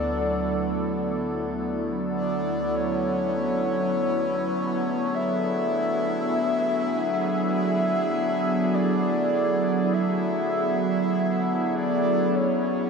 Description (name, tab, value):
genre	ambient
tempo	50 BPM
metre	4/4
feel	straight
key	unclear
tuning	A4 = 440 Hz
part	breathy flute-like synth lead	melody	0.0-12.9 s	C#5 to E5	-27 LUFS	equal	wide subtle chorus, vintage 12-bit sampler grit, tape echo
part	evolving wavetable pad	sustained chords	0.0-12.9 s	D2 to A4	-25 LUFS	right 1 dB	chorus, built-in reverb
part	pedal harmonium	drone	0.0-12.5 s	D3 to A3	-32 LUFS	left 2 dB	none
part	glass harmonica	texture	0.0-12.9 s	F#4 to F#5	-37 LUFS	left 4 dB	stereo widening
room	wet huge ambient reverb, RT60 7.1 s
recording	in a vast, echoing space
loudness	-22 LUFS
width	side -5 dB against mid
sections	0.0-12.3 A section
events	none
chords	0.0 D; 2.7 C#m7